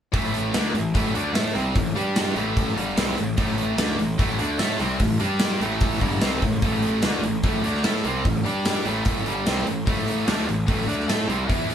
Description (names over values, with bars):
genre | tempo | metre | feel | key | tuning
hard rock | 148 BPM | 4/4 | straight | unclear | A4 = 437 Hz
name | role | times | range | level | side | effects
high-gain distorted guitar | riff | 0.1-11.7 s | G2 to A4 | -27 LUFS | left 4 dB | distortion
high-gain distorted guitar | riff | 0.1-11.7 s | G2 to A4 | -27 LUFS | right 6 dB | distortion
fuzz picked electric bass | bass | 0.1-11.7 s | G1 to A2 | -28 LUFS | equal | overdrive
gated 80s drum kit | drums | 0.1-11.7 s | hi-hat, kick drum, snare drum | -24 LUFS | equal | none
room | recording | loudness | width
moderate small room reverb, RT60 0.5 s | band playing live in one room, lossy compression artefacts | -20 LUFS | side -9 dB against mid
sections
0.1-11.7 A section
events
none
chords
0.1 A5; 2.0 G5; 2.4 A5; 5.2 G5; 5.6 A5; 8.5 G5; 8.9 A5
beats
| 0.13 0.54 0.94 1.35 | 1.76 2.16 2.57 2.97 | 3.38 3.79 4.19 4.60 | 5.00 5.41 5.81 6.22 | 6.62 7.03 7.44 7.84 | 8.25 8.65 9.06 9.47 | 9.87 10.28 10.68 11.09 | 11.49